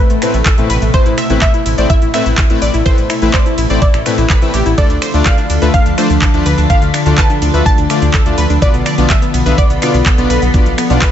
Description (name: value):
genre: progressive house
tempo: 125 BPM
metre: 4/4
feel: straight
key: A minor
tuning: A4 = 440 Hz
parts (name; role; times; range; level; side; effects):
- wide unison pluck; melody; 0.0-11.1 s; B4 to A5; -21 LUFS; right 1 dB; ping-pong delay
- evolving wavetable pad; sustained chords; 0.0-11.1 s; B2 to F4; -19 LUFS; left 1 dB; chorus, built-in reverb, phaser, sidechain pumping
- analog pluck; arpeggios; 0.0-11.1 s; A3 to E5; -20 LUFS; left 2 dB; chorus, sidechain pumping, ping-pong delay
- backwards swelling texture; texture; 0.1-11.1 s; A4 to B5; -26 LUFS; right 1 dB; built-in reverb, sidechain pumping
- round analog bass; bass; 0.1-11.0 s; A1 to D2; -15 LUFS; equal; sidechain pumping
- pop drum kit; drums; 0.1-11.1 s; finger snaps, handclaps, hi-hat, ride cymbal, shaker; -20 LUFS; right 1 dB; studio reverb
- soft supersaw; stabs; 0.2-11.0 s; A2 to E5; -18 LUFS; left 4 dB; vintage 12-bit sampler grit, sidechain pumping, ping-pong delay
- electronic kick drum; drums; 0.5-11.1 s; none; -12 LUFS; equal; studio reverb
room: little or no reverb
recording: nothing above 7.9 kHz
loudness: -10 LUFS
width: side -10 dB against mid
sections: 0.0-11.1 A section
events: none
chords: 0.0 Amadd9; 4.8 Dm; 8.6 Bdim